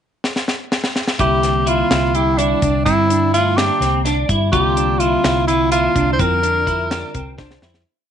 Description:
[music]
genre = progressive instrumental, band music in an uneven meter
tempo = 252 BPM (eighths)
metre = 7/8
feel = straight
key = C mixolydian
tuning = A4 = 440 Hz
[part]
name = deep reggae drum kit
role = drums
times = 0.2-7.9 s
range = hi-hat, kick drum, snare drum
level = -21 LUFS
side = left 1 dB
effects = none
[part]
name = breathy tenor saxophone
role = melody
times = 1.2-7.4 s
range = D4 to C5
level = -18 LUFS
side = equal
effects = none
[part]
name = vibraphone with hard mallets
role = second line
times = 1.2-7.4 s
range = G3 to F4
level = -26 LUFS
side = right 13 dB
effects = none
[part]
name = barky tine electric piano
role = accompaniment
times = 1.2-7.8 s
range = D3 to E5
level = -26 LUFS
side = left 11 dB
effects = none
[part]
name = clean electric guitar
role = arpeggios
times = 1.2-7.8 s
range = C4 to G4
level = -22 LUFS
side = right 1 dB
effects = ensemble chorus
[part]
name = hollow-body short-scale fingered electric bass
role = bass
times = 1.2-7.8 s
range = C2 to G2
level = -21 LUFS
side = equal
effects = none
[sound]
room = light reverb, small room ambience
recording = 1960s-style stereo with parts hard left and right, nothing above 10.6 kHz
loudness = -14 LUFS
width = side -9 dB against mid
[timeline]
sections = 0.0-1.2 pickup bar; 1.2-7.9 groove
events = drum fill 0.2-1.2, 7.4-7.9; fade-out 6.2-7.9; tine electric piano fill 7.1-7.9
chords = 0.0 N.C.; 1.2 C7; 4.5 Bbsus2/C

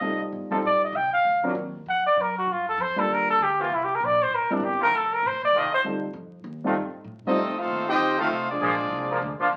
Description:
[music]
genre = jazz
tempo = 195 BPM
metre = 4/4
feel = swing 62% on 8ths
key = F mixolydian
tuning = A4 = 442 Hz
[part]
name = warm trumpet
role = melody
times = 0.0-5.8 s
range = D4 to G5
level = -24 LUFS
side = equal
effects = none
[part]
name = dark upright piano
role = accompaniment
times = 0.0-7.4 s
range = F#3 to C5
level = -30 LUFS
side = equal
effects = none
[part]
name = upright bass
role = bass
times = 0.0-9.6 s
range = Eb1 to A2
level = -44 LUFS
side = equal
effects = none
[part]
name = clear trombone section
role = sustained chords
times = 0.5-1.5, 3.6-9.5 s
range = Eb3 to A#4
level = -30 LUFS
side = equal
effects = none
[part]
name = clear trumpet section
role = melody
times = 7.3-9.4 s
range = Bb3 to G5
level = -29 LUFS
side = equal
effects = none
[part]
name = clear trombone section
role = second line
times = 7.3-9.4 s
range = F3 to G4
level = -30 LUFS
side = equal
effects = none
[sound]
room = wet club reverb, RT60 0.6 s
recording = very old 78 rpm record, vinyl crackle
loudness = -24 LUFS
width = mono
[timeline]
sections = 0.0-7.4 A section; 7.4-9.6 B section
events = trumpet solo 0.0-7.4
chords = 0.0 F7; 1.2 D7alt; 2.5 Gm7; 3.7 C7(no3); 4.9 F7; 8.6 Bb7

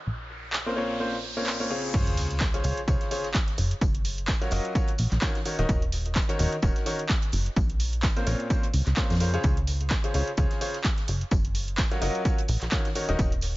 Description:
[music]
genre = piano house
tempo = 128 BPM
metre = 4/4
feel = swing 56% on 16ths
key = Db major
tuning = A4 = 440 Hz
[part]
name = riser and sub drop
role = sound effects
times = 0.0-3.8 s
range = none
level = -35 LUFS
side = equal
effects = none
[part]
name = plucky analog bass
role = bass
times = 0.1-13.6 s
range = Eb1 to F2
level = -27 LUFS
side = equal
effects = sidechain pumping
[part]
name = punchy analog drum machine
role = drums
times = 0.5-13.5 s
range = crash cymbal, handclaps, hi-hat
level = -33 LUFS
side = right 1 dB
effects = overdrive
[part]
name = bright upright piano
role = riff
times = 0.7-13.3 s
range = Bb2 to Eb5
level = -31 LUFS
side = left 1 dB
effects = sidechain pumping, tape echo
[part]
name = compact cocktail drum kit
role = drums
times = 1.9-13.6 s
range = hi-hat, snare drum, tambourine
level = -43 LUFS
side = left 1 dB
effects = none
[part]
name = electronic kick drum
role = drums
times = 1.9-13.3 s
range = none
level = -26 LUFS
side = equal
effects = overdrive
[sound]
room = small room ambience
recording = nothing above 7.6 kHz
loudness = -24 LUFS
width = side -19 dB against mid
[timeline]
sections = 0.0-1.9 A section; 1.9-13.6 B section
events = riser 0.0-1.9; drop 1.9-13.6; impact 1.9-3.8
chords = 0.1 Bbmadd9; 1.9 Dbmaj7; 3.6 Gbmaj7; 5.5 Ebm7; 7.6 Bbmadd9; 9.4 Dbmaj7; 11.1 Gbmaj7; 13.0 Ebm7

